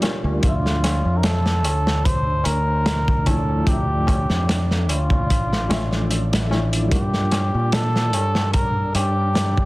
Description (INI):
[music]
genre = trip hop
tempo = 74 BPM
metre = 4/4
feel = swing 54% on 16ths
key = D minor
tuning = A4 = 440 Hz
[part]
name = felt-muted upright piano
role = accompaniment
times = 0.0-9.7 s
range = F3 to E5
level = -28 LUFS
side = left 1 dB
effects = tremolo, tape echo
[part]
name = crunchy breakbeat drum kit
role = drums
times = 0.0-9.7 s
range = hi-hat, kick drum, snare drum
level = -22 LUFS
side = equal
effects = vintage 12-bit sampler grit
[part]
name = tabla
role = percussion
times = 0.0-9.5 s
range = none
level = -34 LUFS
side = left 2 dB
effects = none
[part]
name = flickering grainy texture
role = texture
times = 0.0-9.7 s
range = D4 to D5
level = -36 LUFS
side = equal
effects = none
[part]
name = fingered electric bass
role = bass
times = 0.2-9.7 s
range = A1 to Bb2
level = -22 LUFS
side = equal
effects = none
[part]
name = trumpet with cup mute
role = melody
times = 0.4-9.7 s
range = F4 to C5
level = -25 LUFS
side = equal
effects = tape echo
[sound]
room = small room ambience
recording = dense, heavily limited modern master, vinyl crackle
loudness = -18 LUFS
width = side -20 dB against mid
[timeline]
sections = 0.0-9.7 A section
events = none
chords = 0.4 Dmadd9; 6.9 Gm7